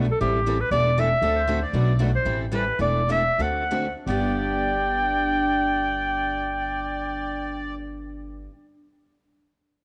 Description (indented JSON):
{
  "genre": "acoustic string swing (jazz manouche)",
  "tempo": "164-235 BPM",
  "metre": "4/4",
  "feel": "swing 57% on 8ths",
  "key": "G major",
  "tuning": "A4 = 440 Hz",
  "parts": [
    { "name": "picked steel-string acoustic guitar", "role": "accompaniment", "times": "0.0-8.5 s", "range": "G2 to A4", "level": "-33 LUFS", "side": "equal", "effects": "cassette tape" },
    { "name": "picked steel-string acoustic guitar", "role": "accompaniment", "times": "0.0-8.5 s", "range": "G2 to B4", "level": "-36 LUFS", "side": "equal", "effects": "cassette tape" },
    { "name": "upright bass", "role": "bass", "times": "0.0-8.5 s", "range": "E1 to D2", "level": "-30 LUFS", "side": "equal", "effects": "none" },
    { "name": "breathy clarinet", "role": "melody", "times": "0.1-7.8 s", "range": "G4 to G5", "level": "-26 LUFS", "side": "equal", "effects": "cassette tape" },
    { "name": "accordion", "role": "second line", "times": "1.2-2.0, 4.1-7.8 s", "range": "A4 to D5", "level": "-36 LUFS", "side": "equal", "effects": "cassette tape" }
  ],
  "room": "light reverb, small room ambience",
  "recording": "home recording on cassette",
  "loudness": "-24 LUFS",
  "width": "mono",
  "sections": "0.0-4.1 A section; 4.1-7.0 B section",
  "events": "slowing down 1.7-4.1",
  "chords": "0.2 Am7; 0.7 E7sus4; 1.2 D9; 1.7 Bm7; 2.3 Am9; 2.8 E7sus4; 3.4 D7; 4.1 G"
}